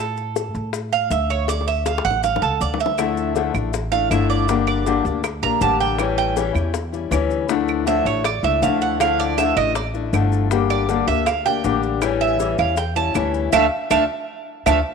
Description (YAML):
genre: latin, Cuban son and guajira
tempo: 159 BPM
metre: 4/4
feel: straight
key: D harmonic minor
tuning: A4 = 440 Hz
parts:
  - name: Cuban tres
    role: arpeggios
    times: 0.0-14.8 s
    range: A4 to Bb5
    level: -21 LUFS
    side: right 8 dB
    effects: none
  - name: upright bass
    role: bass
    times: 0.0-14.8 s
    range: G1 to A2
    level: -24 LUFS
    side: equal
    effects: none
  - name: bongos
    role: percussion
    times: 0.2-14.8 s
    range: none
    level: -29 LUFS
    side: left 11 dB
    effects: none
  - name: maracas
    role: percussion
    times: 0.2-14.8 s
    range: none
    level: -37 LUFS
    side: left 12 dB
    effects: none
  - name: fingerpicked acoustic archtop guitar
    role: accompaniment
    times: 3.0-14.8 s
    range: D3 to G4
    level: -22 LUFS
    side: left 11 dB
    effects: none
  - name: claves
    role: percussion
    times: 3.0-14.8 s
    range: none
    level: -30 LUFS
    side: right 12 dB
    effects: none
room: moderate echo chamber reverb, RT60 2.2 s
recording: 1960s-style stereo with parts hard left and right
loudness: -18 LUFS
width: side -5 dB against mid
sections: 0.0-14.9 A section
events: Cuban tres solo 0.0-14.9; drum fill 1.5-3.0, 13.9-14.9; band accent 13.5-14.9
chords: 0.0 Dmmaj7; 1.5 Dmadd9; 4.5 Gm; 6.0 A7; 7.5 Dmadd9; 10.5 Gm; 12.0 A7; 13.5 Dmadd9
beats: 0.36 0.74 1.11 | 1.49 1.86 2.24 2.61 | 2.99 3.36 3.74 4.11 | 4.49 4.87 5.24 5.62 | 5.99 6.37 6.75 7.12 | 7.50 7.87 8.25 8.63 | 9.01 9.38 9.76 10.14 | 10.51 10.89 11.27 11.65 | 12.02 12.40 12.78 13.16 | 13.54 13.91 14.29 14.67